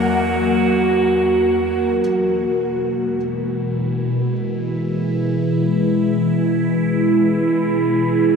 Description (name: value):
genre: ambient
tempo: free time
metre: none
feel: none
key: E lydian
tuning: A4 = 440 Hz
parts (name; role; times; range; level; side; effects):
- warm velvety synth lead; melody; 0.0-1.2 s; F#5; -28 LUFS; equal; chorus, ping-pong delay
- evolving wavetable pad; sustained chords; 0.0-8.4 s; E2 to A#4; -16 LUFS; equal; phaser, built-in reverb
- organ-like drone; drone; 0.7-8.4 s; E3; -28 LUFS; equal; ensemble chorus, built-in reverb
room: wet huge ambient reverb, RT60 8.1 s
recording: in a vast, echoing space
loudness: -16 LUFS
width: side -6 dB against mid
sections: 0.0-2.0 A section; 2.0-8.4 B section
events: none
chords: 0.0 D#m/E (rootless); 2.0 E